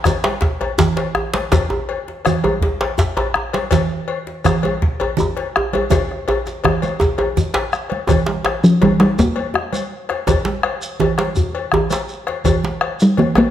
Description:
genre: west african traditional, West African drum ensemble.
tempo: 110 BPM (dotted quarters).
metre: 12/8.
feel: straight.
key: unclear.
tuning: A4 = 439 Hz.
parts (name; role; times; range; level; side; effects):
bombo; percussion; 0.0-13.5 s; none; -21 LUFS; left 1 dB; none.
congas; percussion; 0.1-13.5 s; none; -22 LUFS; right 6 dB; none.
cowbell; percussion; 0.1-13.5 s; none; -24 LUFS; left 6 dB; none.
djembe; percussion; 0.1-13.5 s; none; -24 LUFS; left 5 dB; none.
djembe; percussion; 0.1-13.5 s; none; -21 LUFS; right 1 dB; none.
shekere; percussion; 0.1-13.2 s; none; -25 LUFS; right 1 dB; none.
talking drum; melody; 8.6-13.5 s; F3 to Bb3; -12 LUFS; equal; none.
room: moderate recital hall reverb, RT60 1.4 s.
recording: none.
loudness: -16 LUFS.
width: side -11 dB against mid.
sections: 0.0-8.1 A section; 8.1-13.5 B section.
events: drum fill 5.9-8.1.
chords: none.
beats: 0.43 0.98 | 1.53 2.08 2.63 3.18 | 3.73 4.27 4.82 5.37 | 5.92 6.46 7.01 7.55 | 8.10 8.64 9.19 9.73 | 10.28 10.82 11.37 11.91 | 12.45 12.99.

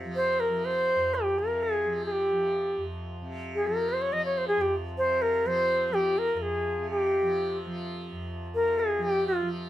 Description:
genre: indian classical.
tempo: 125 BPM.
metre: 5/4.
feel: straight.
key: F raga darbari.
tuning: A4 = 439 Hz.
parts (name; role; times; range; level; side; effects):
tanpura; drone; 0.0-9.7 s; F2 to F3; -35 LUFS; right 1 dB; none.
bright reedy bansuri; melody; 0.2-9.5 s; F4 to Eb5; -25 LUFS; equal; none.
room: light reverb.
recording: minimal, uncompressed stereo recording.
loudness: -25 LUFS.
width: side -13 dB against mid.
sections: 0.0-9.7 A section.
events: speeding up 0.0-9.7.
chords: none.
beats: 0.14 0.63 1.12 1.60 | 2.09 2.57 3.06 3.54 4.02 | 4.50 4.98 5.46 5.94 6.42 | 6.89 7.37 7.84 8.32 8.79 | 9.26.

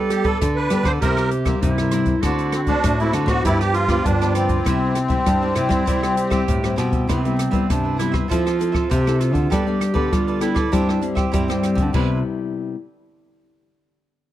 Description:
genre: samba and choro.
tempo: 99 BPM.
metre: 4/4.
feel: straight.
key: C major.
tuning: A4 = 437 Hz.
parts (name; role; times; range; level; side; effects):
clear clarinet; second line; 0.0-12.2 s; C4 to A4; -26 LUFS; right 6 dB; slapback echo.
cavaquinho; accompaniment; 0.0-12.2 s; E4 to E5; -30 LUFS; right 5 dB; none.
nylon-string guitar; accompaniment; 0.0-12.7 s; G2 to A4; -25 LUFS; left 6 dB; none.
nylon-string guitar; bass; 0.0-12.2 s; G2 to G3; -22 LUFS; equal; none.
musette accordion; melody; 0.1-6.4 s; C4 to C5; -22 LUFS; equal; none.
open jazz drum kit; drums; 0.1-12.1 s; crash cymbal, hi-hat, kick drum, rim click; -24 LUFS; equal; none.
room: small room ambience.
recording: dry, close 1970s-style studio recording.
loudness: -17 LUFS.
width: side -13 dB against mid.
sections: 0.0-7.1 A section; 7.1-11.9 B section; 11.9-14.3 C section.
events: none.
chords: 0.0 Gadd9; 1.0 C7; 2.2 D7; 3.4 G7; 4.7 C; 7.1 Cmaj7; 8.3 Fmaj7; 9.5 Gadd9; 10.7 C/G; 11.9 Cmaj7.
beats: 0.41 1.02 1.63 | 2.24 2.84 3.45 4.06 | 4.66 5.27 5.88 6.48 | 7.09 7.70 8.30 8.91 | 9.51 10.12 10.73 11.33 | 11.94 12.54.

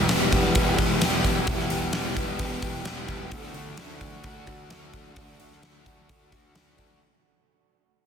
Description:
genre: rock, shoegaze and dream pop.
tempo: 130 BPM.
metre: 4/4.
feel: straight.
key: D major.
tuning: A4 = 440 Hz.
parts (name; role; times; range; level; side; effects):
picked twelve-string acoustic guitar; arpeggios; 0.0-7.0 s; E3 to G4; -36 LUFS; left 1 dB; lush chorus, analog delay.
crunchy overdriven guitar; riff; 0.0-7.0 s; E2 to G4; -31 LUFS; right 12 dB; reverse reverb.
overdriven semi-hollow guitar; riff; 0.0-7.0 s; E2 to G4; -30 LUFS; left 10 dB; lush chorus.
fuzz picked electric bass; bass; 0.0-7.0 s; E1 to D2; -31 LUFS; equal; overdrive.
huge arena drum kit; drums; 0.1-6.9 s; hi-hat, kick drum, snare drum; -27 LUFS; equal; none.
room: light reverb, studio reverb.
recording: dense, heavily limited modern master.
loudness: -22 LUFS.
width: side -7 dB against mid.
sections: 0.0-7.0 A section.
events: fade-out 0.0-7.0.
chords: 0.0 Em; 3.3 D.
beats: 0.10 0.56 1.02 | 1.48 1.94 2.40 2.86 | 3.32 3.78 4.24 4.70 | 5.16 5.63 6.09 6.55.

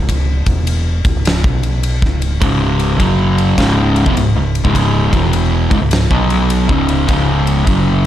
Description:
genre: stoner and doom metal.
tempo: 103 BPM.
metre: 4/4.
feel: swing 65% on 8ths.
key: C# minor.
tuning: A4 = 440 Hz.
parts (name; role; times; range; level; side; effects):
overdriven fingered electric bass; bass; 0.0-8.1 s; C#1 to B1; -17 LUFS; equal; none.
big rock drum kit; drums; 0.1-7.8 s; kick drum, ride cymbal, snare drum; -17 LUFS; equal; none.
fuzz guitar; riff; 2.4-8.1 s; C#2 to B3; -13 LUFS; equal; distortion.
room: small room ambience.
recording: dark, warm production.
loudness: -12 LUFS.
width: side -12 dB against mid.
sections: 0.0-8.1 A section.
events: none.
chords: 0.4 N.C.; 2.0 C#5; 3.0 F#5; 3.6 C#m; 5.0 E5; 5.6 C#5; 6.1 B5; 6.6 C#5.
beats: | 0.08 0.67 1.25 1.83 | 2.42 3.00 3.58 4.17 | 4.75 5.33 5.92 6.50 | 7.08 7.67.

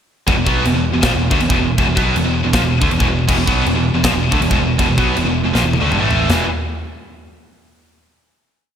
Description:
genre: heavy metal.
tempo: 160 BPM.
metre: 4/4.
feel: straight.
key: unclear.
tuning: A4 = 441 Hz.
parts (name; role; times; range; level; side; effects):
distorted electric guitar; riff; 0.3-6.4 s; E2 to B3; -21 LUFS; left 1 dB; overdrive.
heavy high-gain guitar; riff; 0.3-6.5 s; E2 to B3; -21 LUFS; left 10 dB; distortion.
scooped high-gain guitar; riff; 0.3-6.4 s; E2 to B3; -20 LUFS; right 7 dB; distortion.
picked electric bass; bass; 0.3-6.5 s; E1 to D2; -20 LUFS; equal; none.
tight metal drum kit; drums; 0.3-6.4 s; china cymbal, crash cymbal, kick drum, snare drum, toms; -20 LUFS; equal; none.
room: moderate lush hall reverb, RT60 1.8 s, studio reverb.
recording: big arena sound.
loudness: -13 LUFS.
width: side -8 dB against mid.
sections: 0.3-6.3 riff; 6.3-7.8 final chord.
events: drum fill 5.5-6.3.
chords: 0.3 E5.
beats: | 0.28 0.65 1.03 1.41 | 1.78 2.16 2.53 2.91 | 3.28 3.66 4.03 4.41 | 4.79 5.16 5.54 5.92 | 6.29.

